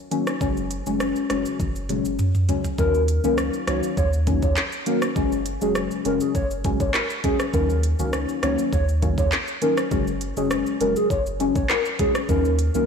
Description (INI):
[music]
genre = dancehall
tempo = 101 BPM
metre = 4/4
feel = straight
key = Eb minor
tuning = A4 = 441 Hz
[part]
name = deep mellow chord stab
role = accompaniment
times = 0.1-12.9 s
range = Db3 to Db4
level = -25 LUFS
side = left 3 dB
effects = chorus
[part]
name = island pop drum kit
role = drums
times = 0.1-12.9 s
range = handclaps, hi-hat, kick drum, rim click, shaker, toms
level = -25 LUFS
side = equal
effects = overdrive, soft clipping on snare
[part]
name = sub bass with octave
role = bass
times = 0.4-12.9 s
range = F1 to Eb2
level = -26 LUFS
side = equal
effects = none
[part]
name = hollow clarinet-like synth lead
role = melody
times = 2.8-12.9 s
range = Ab4 to Db5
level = -26 LUFS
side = right 1 dB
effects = chorus, phaser, tape echo
[sound]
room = light reverb, digital ambience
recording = blown-out, overdriven recording, overdrive, small room ambience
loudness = -20 LUFS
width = side -6 dB against mid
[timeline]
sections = 0.0-2.8 A section; 2.8-12.9 B section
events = drum fill 1.6-2.8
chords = 0.4 Gbsus2; 2.8 Ebm7; 5.2 Gbsus2; 7.5 Ebm7; 9.9 Gbsus2; 12.3 Ebm7